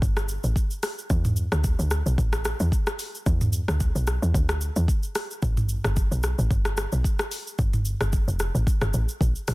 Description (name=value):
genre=amapiano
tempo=111 BPM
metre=4/4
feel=swing 55% on 16ths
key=E minor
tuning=A4 = 440 Hz
part: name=woody log drum bass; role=bass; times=0.0-9.5 s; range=F1 to E2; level=-24 LUFS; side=equal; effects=none
part: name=afro-pop drum kit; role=drums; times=0.0-9.5 s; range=hi-hat, kick drum, rim click, shaker, toms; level=-25 LUFS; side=equal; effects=none
room=little or no reverb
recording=dense, heavily limited modern master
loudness=-22 LUFS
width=side -21 dB against mid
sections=0.0-9.5 A section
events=none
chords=none